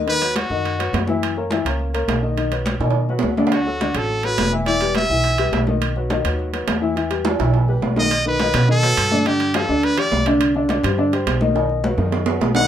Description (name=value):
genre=latin, salsa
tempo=209 BPM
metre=4/4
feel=straight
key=unclear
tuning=A4 = 436 Hz
part: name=warm baby grand piano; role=accompaniment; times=0.0-12.7 s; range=D3 to E5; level=-22 LUFS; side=left 2 dB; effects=none
part: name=upright bass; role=bass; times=0.0-12.7 s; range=E1 to B2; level=-23 LUFS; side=right 1 dB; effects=none
part: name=brilliant trumpet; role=melody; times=0.1-1.0, 3.5-5.6, 8.0-10.3, 12.6-12.7 s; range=F#4 to F#5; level=-20 LUFS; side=right 1 dB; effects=none
part: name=congas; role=percussion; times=0.1-12.7 s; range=none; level=-26 LUFS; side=left 2 dB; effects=none
part: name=timbales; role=percussion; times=0.1-12.6 s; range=none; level=-25 LUFS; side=right 7 dB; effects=none
room=light reverb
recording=minimal, uncompressed stereo recording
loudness=-17 LUFS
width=side -10 dB against mid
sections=0.0-8.1 A section; 8.1-12.7 B section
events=drum fill 2.8-3.5, 7.2-8.1, 11.5-12.7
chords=0.1 B/D#; 1.2 F#7; 2.4 B; 3.5 D6; 4.7 Em; 5.8 B; 7.0 Em; 8.1 B; 9.3 G5; 10.4 Csus2; 11.5 B